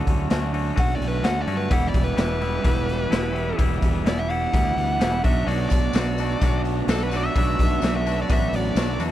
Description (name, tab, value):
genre	indie rock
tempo	128 BPM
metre	4/4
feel	straight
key	unclear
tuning	A4 = 435 Hz
part	crunchy overdriven guitar	riff	0.0-9.1 s	B2 to E4	-29 LUFS	right 12 dB	lush chorus
part	twangy electric guitar	riff	0.0-9.1 s	E2 to F#4	-30 LUFS	left 8 dB	none
part	fuzz fingered electric bass	bass	0.0-9.1 s	E1 to G2	-26 LUFS	equal	overdrive
part	raw garage drum kit	drums	0.1-9.1 s	hi-hat, kick drum, snare drum	-24 LUFS	equal	none
part	dark smooth lead guitar	melody	0.8-9.0 s	A4 to F#5	-28 LUFS	equal	overdrive, tape echo
part	soft string machine	sustained chords	5.9-9.1 s	F#4 to B5	-36 LUFS	left 1 dB	ensemble chorus
part	tambourine	percussion	5.7-9.1 s	none	-44 LUFS	left 29 dB	none
room	little or no reverb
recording	none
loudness	-20 LUFS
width	side -13 dB against mid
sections	0.0-9.1 A section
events	lead electric guitar solo 0.0-9.1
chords	0.0 Dmaj7; 1.7 Em; 5.2 Bm7